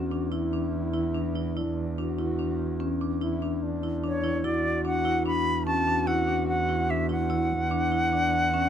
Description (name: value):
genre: contemporary instrumental, chamber music in an uneven meter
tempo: 146 BPM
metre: 7/4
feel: straight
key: unclear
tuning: A4 = 440 Hz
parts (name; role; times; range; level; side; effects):
- mellow French horn; second line; 0.0-8.7 s; D4 to F#4; -34 LUFS; left 3 dB; none
- warm double bass; bass; 0.0-8.7 s; E2; -30 LUFS; right 5 dB; none
- marimba with medium mallets; arpeggios; 0.1-8.6 s; C#4 to E4; -29 LUFS; left 4 dB; none
- bright concert flute; melody; 4.1-8.7 s; C#5 to B5; -26 LUFS; equal; none
room: moderate studio reverb, RT60 0.8 s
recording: close, detailed microphones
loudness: -24 LUFS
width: side -9 dB against mid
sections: 0.0-8.7 A section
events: none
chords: 0.0 E7(no3)